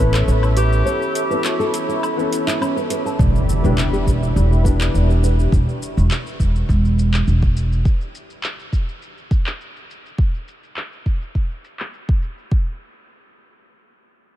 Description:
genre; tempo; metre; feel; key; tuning
organic downtempo; 103 BPM; 4/4; straight; E dorian; A4 = 436 Hz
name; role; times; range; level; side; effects
mellow clarinet; melody; 0.0-2.6 s; E4 to B4; -27 LUFS; right 1 dB; analog delay
felt-muted upright piano; accompaniment; 0.0-5.8 s; E3 to A4; -26 LUFS; left 5 dB; sidechain pumping, low-pass filter, analog delay
warm analog pad; sustained chords; 0.0-7.8 s; G4 to C#6; -29 LUFS; right 1 dB; chorus, sidechain pumping
nylon-string guitar; arpeggios; 0.0-5.5 s; C#4 to A5; -27 LUFS; right 1 dB; low-pass filter, analog delay
upright bass; bass; 0.0-7.8 s; E1 to A1; -16 LUFS; equal; sidechain pumping
deep house drum kit; drums; 0.1-12.5 s; handclaps, hi-hat, shaker, woodblock; -29 LUFS; left 1 dB; overdrive, low-pass filter on perc, low-pass filter on hats, low-pass filter on snare
electronic kick drum; drums; 3.2-12.6 s; none; -18 LUFS; equal; overdrive
impact; sound effects; 3.2-5.5 s; none; -23 LUFS; equal; none
room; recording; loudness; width
light reverb, small room ambience; none; -16 LUFS; side -13 dB against mid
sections
0.0-3.2 A section; 3.2-12.5 B section; 12.5-14.4 C section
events
break 0.9-3.2; impact 3.2-5.5; filter sweep on nylon-string guitar 3.2-5.5; filter sweep on felt piano 3.2-5.5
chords
0.0 Aadd9; 3.2 Em7; 12.5 N.C.

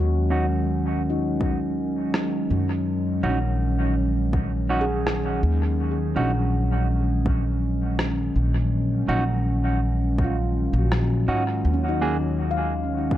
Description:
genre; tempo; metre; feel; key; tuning
ambient dub; 82 BPM; 4/4; straight; Eb minor; A4 = 440 Hz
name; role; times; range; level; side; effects
warbly tape-like pad; sustained chords; 0.0-13.2 s; Eb3 to Bb4; -27 LUFS; equal; chorus, built-in reverb
handpan; arpeggios; 0.0-13.2 s; Db4 to F5; -31 LUFS; left 2 dB; tape echo
upright bass; bass; 0.0-13.2 s; Bb1 to Ab2; -24 LUFS; equal; none
clean electric guitar; stabs; 0.3-12.2 s; Bb3 to Ab4; -30 LUFS; right 2 dB; low-pass filter, dub echo
electronic kick drum; drums; 1.4-13.2 s; none; -25 LUFS; equal; overdrive
electronic rim click; drums; 2.1-11.1 s; none; -32 LUFS; equal; dub echo
room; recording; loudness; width
light reverb; echo-heavy mix; -21 LUFS; side -13 dB against mid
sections
0.0-13.2 A section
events
none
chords
0.0 Ebm7

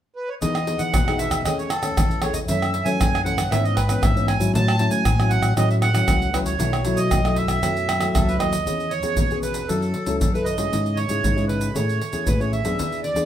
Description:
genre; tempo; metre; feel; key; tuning
samba and choro; 116 BPM; 4/4; straight; E major; A4 = 440 Hz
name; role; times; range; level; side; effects
accordion; melody; 0.2-13.3 s; A4 to A5; -25 LUFS; right 4 dB; none
nylon-string guitar; accompaniment; 0.4-13.3 s; F#2 to A4; -26 LUFS; left 3 dB; none
fingered electric bass; bass; 0.4-13.3 s; B1 to A3; -24 LUFS; equal; none
egg shaker, surdo, pandeiro and tamborim; percussion; 0.4-13.3 s; none; -24 LUFS; equal; none
room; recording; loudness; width
moderate large studio reverb, RT60 0.9 s; band playing live in one room; -19 LUFS; side -10 dB against mid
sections
0.4-8.7 A section; 8.7-13.3 B section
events
none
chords
0.4 Emaj7; 1.4 Amaj7/E; 2.5 F#m7; 3.5 C#m7/G#; 4.5 A6; 5.6 F#m7/A; 6.6 B7sus4; 8.7 E6; 9.7 F#m7; 10.7 C#m/G#; 11.8 Amaj7

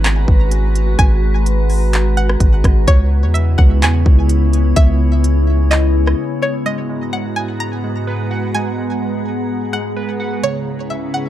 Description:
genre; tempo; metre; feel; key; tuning
hip hop, atmospheric cloud-rap; 127 BPM; 4/4; half-time; unclear; A4 = 441 Hz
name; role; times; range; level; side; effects
string-like resonator pluck; melody; 0.0-11.3 s; C#5 to A#5; -22 LUFS; right 1 dB; chorus, phaser, digital delay
glassy FM pad; sustained chords; 0.0-11.3 s; G#2 to A#5; -21 LUFS; left 1 dB; ensemble chorus, built-in reverb, sidechain pumping
long sustained 808-style bass; bass; 0.0-6.1 s; G#1 to E2; -14 LUFS; equal; none
trap drum kit; drums; 0.0-6.2 s; handclaps, hi-hat, kick drum, rim click; -13 LUFS; equal; none
drifting glass-harmonics texture; texture; 0.0-11.3 s; G#3 to F#5; -30 LUFS; equal; chorus, built-in reverb
warbly lo-fi synth keys; arpeggios; 6.7-11.3 s; C#3 to F#5; -27 LUFS; right 4 dB; chorus, digital delay
room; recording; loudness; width
little or no reverb; dark, warm production; -13 LUFS; side -12 dB against mid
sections
0.0-6.7 A section; 6.7-11.3 B section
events
break 6.2-6.7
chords
0.0 G#m7; 2.9 C#m7; 6.7 G#m7; 10.4 C#m7

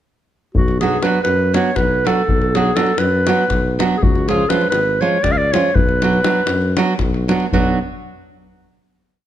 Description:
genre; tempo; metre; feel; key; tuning
balkan folk, Balkan wedding band; 240 BPM (eighths); 7/8; straight; B dorian sharp4; A4 = 440 Hz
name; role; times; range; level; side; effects
mellow clarinet; melody; 0.5-7.8 s; F#4 to E#5; -18 LUFS; right 1 dB; none
mellow tuba; bass; 0.5-7.8 s; G#1 to F#2; -21 LUFS; left 1 dB; none
davul; percussion; 0.6-7.8 s; none; -20 LUFS; left 3 dB; none
nylon-string guitar; accompaniment; 0.8-7.8 s; E#3 to F#4; -19 LUFS; right 4 dB; none
room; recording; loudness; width
light reverb; close, detailed microphones; -14 LUFS; side -11 dB against mid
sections
0.6-7.5 A section; 7.5-9.3 final chord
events
none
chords
0.6 Bm; 4.0 C#; 5.8 Bm

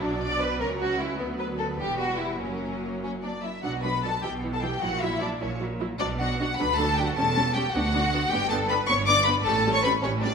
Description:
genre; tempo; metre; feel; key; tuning
quick classical-period movement for string orchestra; 103 BPM (dotted quarters); 6/8; rubato; B minor; A4 = 442 Hz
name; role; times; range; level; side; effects
warm symphonic violin section; melody; 0.0-10.3 s; A#4 to D6; -27 LUFS; left 4 dB; none
warm symphonic violin section; second line; 0.0-10.3 s; B3 to D5; -29 LUFS; equal; none
warm symphonic viola section; accompaniment; 0.0-10.3 s; E3 to E4; -32 LUFS; right 2 dB; none
bright symphonic cello section; bass; 0.0-10.3 s; C#2 to B2; -33 LUFS; right 2 dB; none
rich symphonic double bass section; bass; 0.0-10.3 s; E1 to D2; -33 LUFS; right 3 dB; none
room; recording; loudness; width
wet recital hall reverb, RT60 1.3 s; recorded in a church or concert hall; -23 LUFS; side -6 dB against mid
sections
0.0-3.6 A section; 3.6-10.3 B section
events
none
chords
0.0 Bm; 0.6 F#5/C#; 1.2 Bm/D; 1.8 Emadd9; 2.4 F#; 3.6 Bm; 4.2 Em/B; 4.8 F#7/A#; 6.0 Bm; 6.6 D6; 7.2 C#dim/E; 7.7 Bm/D; 8.3 G; 9.5 A7

